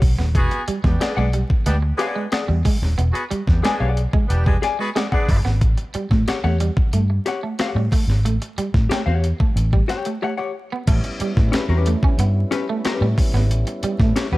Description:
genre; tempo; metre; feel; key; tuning
funk; 91 BPM; 4/4; straight; unclear; A4 = 440 Hz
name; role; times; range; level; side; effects
vintage muted fingered electric bass; bass; 0.0-14.4 s; D#1 to A2; -19 LUFS; equal; none
breakbeat sampler-style drum kit; drums; 0.0-14.3 s; crash cymbal, hi-hat, kick drum, snare drum; -20 LUFS; equal; overdrive
electric guitar at the edge of break-up; riff; 0.2-14.4 s; G3 to C#4; -28 LUFS; right 4 dB; analog chorus
warm horn section; second line; 0.3-5.4 s; G3 to D5; -27 LUFS; equal; none
vintage hollow-body jazz guitar; accompaniment; 1.0-14.4 s; C#4 to G#5; -25 LUFS; left 5 dB; none
mellow tonewheel organ; sustained chords; 10.9-14.4 s; G3 to E4; -30 LUFS; equal; overdrive, chorus vibrato, slow rotary speaker
room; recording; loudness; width
little or no reverb; vinyl crackle; -17 LUFS; side -18 dB against mid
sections
0.0-10.9 A section; 10.9-14.4 B section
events
break 10.2-10.9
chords
0.3 E9; 5.6 A13; 10.9 A9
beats
| 0.35 1.01 1.66 2.32 | 2.98 3.64 4.30 4.96 | 5.62 6.27 6.93 7.59 | 8.25 8.90 9.56 10.22 | 10.88 11.53 12.19 12.85 | 13.50 14.16

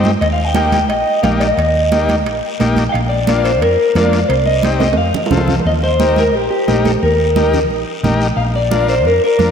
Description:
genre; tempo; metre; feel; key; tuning
latin, cumbia; 177 BPM; 4/4; straight; unclear; A4 = 441 Hz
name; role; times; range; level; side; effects
overdriven combo organ; accompaniment; 0.0-9.5 s; Bb3 to Bb4; -20 LUFS; left 3 dB; none
hollow-body short-scale fingered electric bass; bass; 0.0-9.5 s; Bb1 to G2; -18 LUFS; equal; none
congas; percussion; 0.0-9.5 s; none; -20 LUFS; right 5 dB; none
guiro; percussion; 0.0-9.5 s; none; -31 LUFS; left 4 dB; none
timbales; percussion; 0.1-5.7 s; none; -27 LUFS; right 5 dB; none
electric guitar through a small old amp; melody; 0.2-9.5 s; G4 to G5; -15 LUFS; left 1 dB; spring reverb, analog delay
room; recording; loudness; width
wet lush hall reverb, RT60 2.6 s; dreamy mix soaked in reverb; -12 LUFS; side -7 dB against mid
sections
0.0-5.7 A section; 5.7-9.5 A section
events
drum fill 0.0, 4.8-5.7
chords
0.2 Eb; 2.9 Bb; 4.3 Cm; 5.0 F; 5.7 Eb; 8.4 Bb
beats
| 0.22 0.56 0.90 1.24 | 1.58 1.92 2.26 2.60 | 2.94 3.28 3.62 3.96 | 4.30 4.64 4.98 5.32 | 5.66 6.00 6.34 6.68 | 7.02 7.36 7.70 8.04 | 8.38 8.71 9.05 9.39

